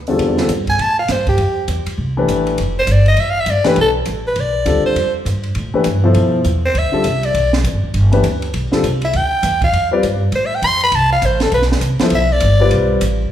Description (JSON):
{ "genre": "modal jazz", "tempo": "201 BPM", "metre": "4/4", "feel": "swing 61% on 8ths", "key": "F lydian", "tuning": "A4 = 440 Hz", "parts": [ { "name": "upright bass", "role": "bass", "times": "0.0-13.3 s", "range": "D1 to A2", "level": "-17 LUFS", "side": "equal", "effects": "none" }, { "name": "dark grand piano", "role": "accompaniment", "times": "0.1-13.0 s", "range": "E2 to D5", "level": "-17 LUFS", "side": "left 2 dB", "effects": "none" }, { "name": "compact cocktail drum kit", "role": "drums", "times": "0.1-13.1 s", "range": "hi-hat, kick drum, ride cymbal, snare drum", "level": "-25 LUFS", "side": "right 2 dB", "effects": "none" }, { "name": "growling soprano saxophone", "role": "melody", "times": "0.7-12.7 s", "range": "G4 to C6", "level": "-16 LUFS", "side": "equal", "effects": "none" } ], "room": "moderate large studio reverb, RT60 1.4 s", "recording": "band playing live in one room", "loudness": "-13 LUFS", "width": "side -11 dB against mid", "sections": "0.2-13.3 A section", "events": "soprano saxophone solo 0.2-13.3", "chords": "0.2 Fmaj9; 2.6 G/F; 5.0 Fmaj9; 7.3 G; 9.7 Fadd9; 12.1 G", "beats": "| 0.20 0.49 0.79 1.09 | 1.39 1.68 1.98 2.28 | 2.58 2.88 3.17 3.47 | 3.77 4.07 4.37 4.66 | 4.96 5.26 5.56 5.86 | 6.15 6.45 6.75 7.05 | 7.34 7.64 7.94 8.24 | 8.54 8.84 9.13 9.43 | 9.73 10.03 10.33 10.62 | 10.92 11.22 11.52 11.82 | 12.12 12.41 12.71 13.01" }